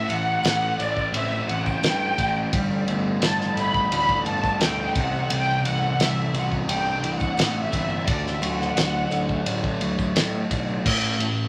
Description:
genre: psychedelic rock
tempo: 86 BPM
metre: 4/4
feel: straight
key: unclear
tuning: A4 = 440 Hz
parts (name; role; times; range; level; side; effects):
- muted studio string section; sustained chords; 0.0-9.5 s; D5 to B5; -28 LUFS; equal; none
- fuzz guitar; riff; 0.0-11.5 s; A2 to D4; -30 LUFS; equal; distortion, phaser
- overtone-sweeping drone; drone; 1.1-10.9 s; A1; -35 LUFS; equal; chorus, built-in reverb
- fuzz picked electric bass; bass; 0.1-11.5 s; G1 to A2; -33 LUFS; equal; overdrive
- damped 70s drum kit; drums; 0.1-11.4 s; crash cymbal, kick drum, ride cymbal, snare drum; -29 LUFS; equal; none
- tambourine; percussion; 0.1-10.8 s; none; -48 LUFS; equal; none
room: moderate club reverb, RT60 0.6 s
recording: none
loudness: -23 LUFS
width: mono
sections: 0.0-10.8 A section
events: string section solo 0.0-10.8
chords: 0.0 Am; 2.5 Gsus2; 5.0 Cadd9; 8.1 D; 10.8 N.C.

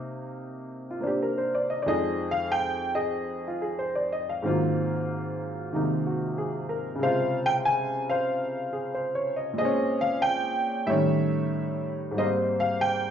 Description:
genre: solo jazz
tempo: 93 BPM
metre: 4/4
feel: swing 68% on 8ths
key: unclear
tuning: A4 = 438 Hz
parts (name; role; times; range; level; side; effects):
- warm upright piano; solo; 0.0-13.1 s; F2 to Ab5; -25 LUFS; equal; none
room: moderate large studio reverb, RT60 1.1 s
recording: band playing live in one room, nothing above 7.7 kHz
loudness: -25 LUFS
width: side -8 dB against mid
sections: 0.0-1.9 A section; 1.9-13.1 B section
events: none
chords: 0.0 Cm9; 1.9 Fm7; 4.4 Ab13; 7.0 Dbmaj7; 9.6 Bbm9; 10.9 A7#11; 12.2 Abmaj9

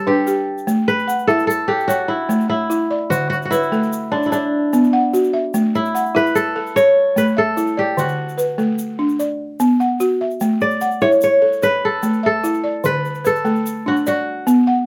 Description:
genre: west african traditional, West African string and xylophone music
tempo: 99 BPM (dotted quarters)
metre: 12/8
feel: straight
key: unclear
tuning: A4 = 440 Hz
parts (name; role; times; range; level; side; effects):
- kora; melody; 0.0-14.9 s; D4 to D5; -21 LUFS; equal; plate reverb
- balafon; arpeggios; 0.0-14.9 s; D3 to F#5; -20 LUFS; equal; none
- tube shaker; percussion; 0.3-14.6 s; none; -38 LUFS; equal; none
room: moderate small room reverb, RT60 0.6 s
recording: none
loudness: -18 LUFS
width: mono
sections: 0.7-14.9 A section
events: none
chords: 0.0 G; 0.7 A; 3.1 D5; 4.3 Bm; 5.5 A; 8.0 D; 9.2 Bm; 10.4 A; 12.8 D5; 14.1 Bm

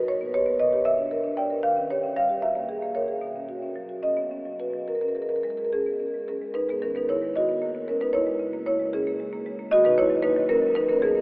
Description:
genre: classical, contemporary piece for solo marimba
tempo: 76 BPM (dotted quarters)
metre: 6/8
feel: rubato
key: G# minor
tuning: A4 = 440 Hz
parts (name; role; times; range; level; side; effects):
- marimba with soft mallets; solo; 0.0-11.2 s; F#2 to G5; -22 LUFS; equal; none
room: wet huge ambient reverb, RT60 7.8 s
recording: in a vast, echoing space, telephone sound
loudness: -22 LUFS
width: side -26 dB against mid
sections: 0.0-6.5 A section; 6.5-11.2 B section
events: none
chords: 0.1 Asus2; 0.9 C9; 1.6 D#7; 2.4 F#9; 3.2 Badd9; 4.9 F#add9; 6.5 G#m11; 8.1 F#9; 9.7 D#m7

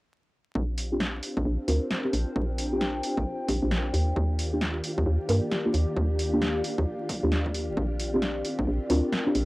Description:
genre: UK garage, two-step garage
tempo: 133 BPM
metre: 4/4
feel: swing 62% on 16ths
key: Bb major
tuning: A4 = 440 Hz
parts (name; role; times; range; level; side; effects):
- soft string machine; sustained chords; 0.6-9.4 s; Bb3 to G4; -36 LUFS; equal; ensemble chorus, sidechain pumping, cassette tape
- hollow knocking FM bass; bass; 0.6-9.4 s; Eb1 to G2; -27 LUFS; equal; tube saturation
- electronic kick drum; drums; 0.6-8.7 s; none; -34 LUFS; equal; high-pass filter on kick, cassette tape
- warbly tape-like pad; texture; 1.6-9.4 s; Eb3 to G5; -34 LUFS; left 1 dB; chorus, built-in reverb, sidechain pumping, cassette tape
- punchy analog drum machine; drums; 0.8-9.4 s; hi-hat, snare drum; -32 LUFS; equal; cassette tape
- deep mellow chord stab; stabs; 0.9-9.3 s; Bb3 to Bb4; -29 LUFS; equal; chorus, cassette tape, tape echo
room: light reverb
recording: home recording on cassette, vinyl crackle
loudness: -25 LUFS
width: side -20 dB against mid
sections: 0.6-9.4 A section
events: filter sweep on synth stab 0.6-9.4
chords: 0.6 Bb69; 3.9 Ebmaj9; 7.8 Bb69

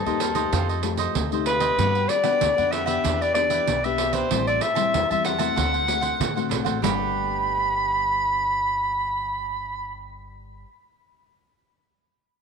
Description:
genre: samba and choro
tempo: 95 BPM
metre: 4/4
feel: straight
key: G major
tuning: A4 = 440 Hz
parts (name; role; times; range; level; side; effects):
- dark soprano saxophone; melody; 0.0-10.1 s; A4 to B5; -23 LUFS; equal; none
- cavaquinho; accompaniment; 0.0-10.7 s; D4 to A5; -31 LUFS; right 11 dB; none
- nylon-string guitar; accompaniment; 0.0-10.7 s; G2 to B4; -29 LUFS; left 15 dB; none
- upright bass; bass; 0.0-10.6 s; G1 to D3; -31 LUFS; equal; none
- pandeiro; percussion; 0.1-7.0 s; none; -28 LUFS; right 12 dB; none
room: moderate plate reverb, RT60 3.3 s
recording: 1960s-style stereo with parts hard left and right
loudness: -20 LUFS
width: side -6 dB against mid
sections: 0.0-6.8 A section; 6.8-9.4 B section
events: none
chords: 0.0 Cm7; 0.5 F9; 1.8 Gmaj7; 3.0 Em7; 4.3 Am7; 5.6 D7; 6.8 Gmaj7

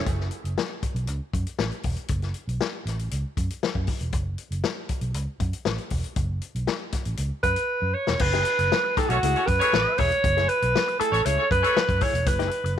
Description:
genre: funk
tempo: 118 BPM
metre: 4/4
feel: straight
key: F# minor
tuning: A4 = 441 Hz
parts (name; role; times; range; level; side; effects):
- breathy alto saxophone; melody; 0.0-0.1, 7.4-12.8 s; F#4 to C#5; -23 LUFS; right 2 dB; none
- vintage muted fingered electric bass; bass; 0.0-12.8 s; E1 to F#2; -27 LUFS; right 1 dB; none
- vintage drum kit; drums; 0.1-12.8 s; crash cymbal, hi-hat, kick drum, snare drum; -27 LUFS; left 3 dB; none
- clean electric guitar; accompaniment; 8.2-12.7 s; A3 to G#4; -32 LUFS; left 13 dB; wah, wide subtle chorus
- clear horn section; second line; 9.1-11.8 s; C#4 to C#5; -28 LUFS; equal; none
room: light reverb, small room ambience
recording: 1960s-style stereo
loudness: -22 LUFS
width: side -9 dB against mid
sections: 0.1-8.2 A section; 8.2-12.8 B section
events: drum fill 7.7-8.2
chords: 0.1 F#m; 8.2 F#m9

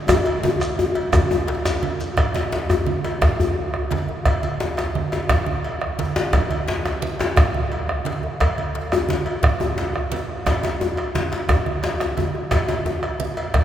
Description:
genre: west african traditional, West African drum ensemble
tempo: 116 BPM (dotted quarters)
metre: 12/8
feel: straight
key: none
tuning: none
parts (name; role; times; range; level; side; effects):
- bombo; percussion; 0.1-13.6 s; none; -24 LUFS; right 1 dB; none
- congas; percussion; 0.1-13.6 s; none; -27 LUFS; right 3 dB; none
- cowbell; percussion; 0.1-13.6 s; none; -30 LUFS; equal; none
- djembe; percussion; 0.1-13.6 s; none; -29 LUFS; left 2 dB; none
- djembe; percussion; 0.1-13.0 s; none; -24 LUFS; left 3 dB; none
- shekere; percussion; 0.1-2.1 s; none; -36 LUFS; left 1 dB; none
room: wet cathedral reverb, RT60 5.1 s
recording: recorded in a church or concert hall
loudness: -19 LUFS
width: side -10 dB against mid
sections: 0.0-2.2 A section; 2.2-13.6 B section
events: drum fill 0.1-2.2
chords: none

